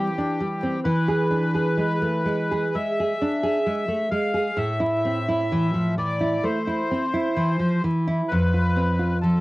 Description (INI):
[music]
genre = romantic duo for bandoneon and classical guitar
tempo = 65 BPM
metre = 4/4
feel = rubato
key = unclear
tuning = A4 = 440 Hz
[part]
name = bandoneon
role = melody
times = 0.0-9.4 s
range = G4 to F5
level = -26 LUFS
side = left 2 dB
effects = cassette tape
[part]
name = nylon-string guitar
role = accompaniment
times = 0.0-9.4 s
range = F2 to G#4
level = -22 LUFS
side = right 1 dB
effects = none
[sound]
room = moderate studio reverb, RT60 0.6 s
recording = home recording on cassette, vinyl crackle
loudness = -21 LUFS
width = side -19 dB against mid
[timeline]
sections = 0.0-9.4 A section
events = none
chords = 0.0 C/E; 0.8 E7; 4.6 Am; 8.3 F